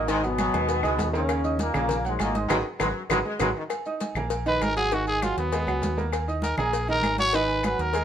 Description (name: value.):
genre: latin, salsa.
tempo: 198 BPM.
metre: 4/4.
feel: straight.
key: Eb minor.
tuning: A4 = 442 Hz.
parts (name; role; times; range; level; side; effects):
bright trombone section; melody; 0.0-3.5 s; Ab2 to Db4; -27 LUFS; left 2 dB; none.
clear baby grand piano; accompaniment; 0.0-8.0 s; Eb3 to Eb6; -29 LUFS; right 4 dB; none.
deep dub fingered electric bass; bass; 0.0-8.0 s; Ab1 to Eb2; -30 LUFS; equal; none.
brilliant trombone section; second line; 0.1-3.6 s; Db3 to Ab3; -33 LUFS; left 2 dB; none.
agogo bells and timbales; percussion; 0.1-8.0 s; none; -34 LUFS; right 5 dB; none.
congas; percussion; 0.1-8.0 s; none; -34 LUFS; equal; none.
cowbell; percussion; 0.1-8.0 s; none; -35 LUFS; left 9 dB; none.
maracas; percussion; 0.1-8.0 s; none; -44 LUFS; left 6 dB; none.
claves; percussion; 0.4-7.8 s; none; -36 LUFS; left 6 dB; none.
growling trumpet; melody; 4.5-8.0 s; Cb4 to Db5; -25 LUFS; equal; none.
room: moderate studio reverb, RT60 0.8 s.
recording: none.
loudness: -23 LUFS.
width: side -9 dB against mid.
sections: 0.0-3.7 A section; 3.7-8.0 B section.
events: drum fill 2.5-3.7; band accent 2.5-3.7; trumpet solo 3.7-8.0.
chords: 0.1 Abm7; 1.3 Ebm7; 2.5 Abm7; 3.7 Ebm; 4.9 Abm7; 6.1 Ebm; 7.3 Abm7.